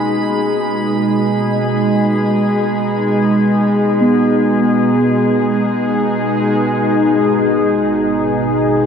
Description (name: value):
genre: ambient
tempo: free time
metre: none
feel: none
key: G# minor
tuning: A4 = 438 Hz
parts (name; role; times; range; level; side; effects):
- evolving wavetable pad; sustained chords; 0.0-8.9 s; B2 to G#4; -14 LUFS; equal; chorus, built-in reverb
- muted felt-like synth keys; arpeggios; 0.0-6.6 s; B3; -21 LUFS; right 2 dB; chorus, diffuse ambient delay
- overtone-sweeping drone; drone; 0.0-6.7 s; G#3 to D#4; -26 LUFS; right 1 dB; chorus, built-in reverb, phaser
- drifting glass-harmonics texture; texture; 0.0-6.6 s; B5; -30 LUFS; right 2 dB; chorus, built-in reverb
- dark studio double bass section; bass; 6.6-8.9 s; G#1; -37 LUFS; equal; none
room: wet huge ambient reverb, RT60 8.1 s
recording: in a vast, echoing space, cassette tape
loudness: -13 LUFS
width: side -7 dB against mid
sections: 0.0-6.6 A section; 6.6-8.9 B section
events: fade-out on synth texture 0.0-6.6; filter sweep on ambient pad 0.0-6.6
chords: 0.0 G#madd9; 6.6 G#m